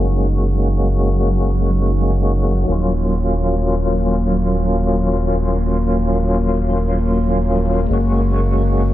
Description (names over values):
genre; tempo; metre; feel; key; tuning
trip hop; free time; none; none; Eb minor; A4 = 437 Hz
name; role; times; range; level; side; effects
tonewheel organ; accompaniment; 0.0-8.9 s; Gb3 to Gb4; -20 LUFS; left 1 dB; overdrive, chorus vibrato, slow rotary speaker, tremolo, tape echo
warbly tape-like pad; sustained chords; 0.0-8.9 s; Bb3 to Eb4; -26 LUFS; left 3 dB; chorus, built-in reverb
round analog bass; bass; 0.0-8.9 s; Eb1 to Gb1; -18 LUFS; equal; none
flickering grainy texture; texture; 0.0-8.9 s; Gb3; -27 LUFS; right 1 dB; built-in reverb
room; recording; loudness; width
little or no reverb; low-pass filter; -15 LUFS; side -14 dB against mid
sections
0.0-8.9 A section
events
filter sweep on ambient pad 0.0-8.9; filter sweep 0.0-8.9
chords
0.0 Gbadd9; 2.7 Ebm7; 7.9 Gbadd9